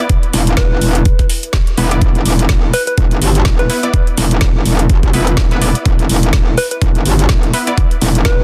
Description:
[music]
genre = bass house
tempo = 125 BPM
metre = 4/4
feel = swing 57% on 16ths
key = unclear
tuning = A4 = 438 Hz
[part]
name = orchestra-hit-like synth stab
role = stabs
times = 0.0-8.4 s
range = B3 to D5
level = -24 LUFS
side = equal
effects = built-in reverb, sidechain pumping, tape echo
[part]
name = warbly tape-like pad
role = texture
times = 0.3-8.4 s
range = E4 to E5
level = -39 LUFS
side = equal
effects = none
[part]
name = electronic kick drum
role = drums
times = 0.1-8.4 s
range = none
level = -15 LUFS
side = equal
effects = none
[part]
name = garage drum kit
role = drums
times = 0.1-8.4 s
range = hi-hat, snare drum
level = -23 LUFS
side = equal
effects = none
[part]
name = metallic wobble bass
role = bass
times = 0.3-8.4 s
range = E1 to G1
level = -16 LUFS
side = equal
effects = distortion, chorus, tube saturation, sidechain pumping
[part]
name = soft struck synth lead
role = melody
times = 0.6-8.4 s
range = B4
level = -22 LUFS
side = equal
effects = chorus, vintage 12-bit sampler grit, tape echo
[sound]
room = little or no reverb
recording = dense, heavily limited modern master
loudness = -13 LUFS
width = mono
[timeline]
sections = 0.0-8.4 A section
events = none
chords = 0.0 E5

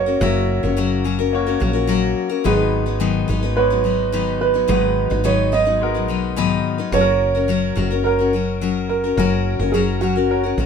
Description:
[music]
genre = acoustic pop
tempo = 107 BPM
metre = 4/4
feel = straight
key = G# minor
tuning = A4 = 440 Hz
[part]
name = dark upright piano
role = melody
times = 0.0-10.5 s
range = F#4 to D#5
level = -20 LUFS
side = right 6 dB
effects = none
[part]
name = clear concert grand piano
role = accompaniment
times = 0.0-10.7 s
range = G#3 to E5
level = -27 LUFS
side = left 4 dB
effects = none
[part]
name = picked steel-string acoustic guitar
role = accompaniment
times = 0.0-10.7 s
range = G#2 to B4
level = -20 LUFS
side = left 8 dB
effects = none
[part]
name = woody fretless electric bass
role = bass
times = 0.0-10.7 s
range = F#1 to B1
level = -22 LUFS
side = right 1 dB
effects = none
[sound]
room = little or no reverb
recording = minimal, uncompressed stereo recording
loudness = -16 LUFS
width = side -6 dB against mid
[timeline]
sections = 0.0-2.5 A section; 2.5-10.7 A section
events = none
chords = 0.0 F#; 2.5 G#m7; 6.9 F#

